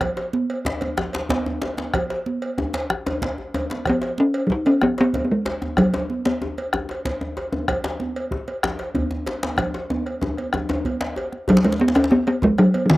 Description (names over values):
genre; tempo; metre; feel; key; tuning
west african traditional, West African drum ensemble; 126 BPM (dotted quarters); 12/8; straight; B major pentatonic; A4 = 440 Hz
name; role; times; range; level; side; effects
bombo; percussion; 0.0-13.0 s; none; -26 LUFS; left 1 dB; none
congas; percussion; 0.0-12.9 s; none; -29 LUFS; right 4 dB; none
cowbell; percussion; 0.0-12.9 s; none; -30 LUFS; right 1 dB; slapback echo
djembe; percussion; 0.0-13.0 s; none; -33 LUFS; left 3 dB; none
djembe; percussion; 0.7-13.0 s; none; -27 LUFS; left 1 dB; none
talking drum; melody; 3.9-6.7, 11.5-13.0 s; D#3 to D#4; -17 LUFS; equal; none
room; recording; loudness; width
little or no reverb; recorded outdoors, with no room sound; -20 LUFS; side -18 dB against mid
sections
0.0-11.5 A section; 11.5-13.0 B section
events
drum fill 3.4-3.9, 9.6-11.5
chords
none